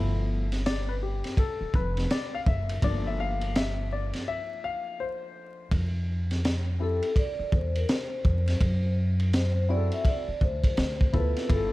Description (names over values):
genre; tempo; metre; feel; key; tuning
hip hop, jazz-hop; 83 BPM; 4/4; swing 63% on 16ths; F major; A4 = 439 Hz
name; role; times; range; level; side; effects
dark concert grand piano; accompaniment; 0.0-11.7 s; F3 to F5; -32 LUFS; left 5 dB; none
upright bass; bass; 0.0-11.7 s; F1 to F#2; -28 LUFS; equal; none
crunchy breakbeat drum kit; drums; 0.5-11.7 s; hi-hat, kick drum, ride cymbal, snare drum; -28 LUFS; equal; none
vibraphone with soft mallets; melody; 6.8-11.7 s; A4 to E5; -32 LUFS; left 1 dB; tape echo
room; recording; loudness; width
small room ambience; dark, warm production, vinyl crackle; -25 LUFS; side -18 dB against mid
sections
0.0-5.7 A section; 5.7-11.7 A section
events
grand piano solo 0.0-5.7; break 4.3-5.7; vibraphone solo 5.7-11.7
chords
0.0 G13; 2.8 C13sus4/G; 5.7 Fmaj7(no3); 8.6 D7/F#; 10.8 Dsus2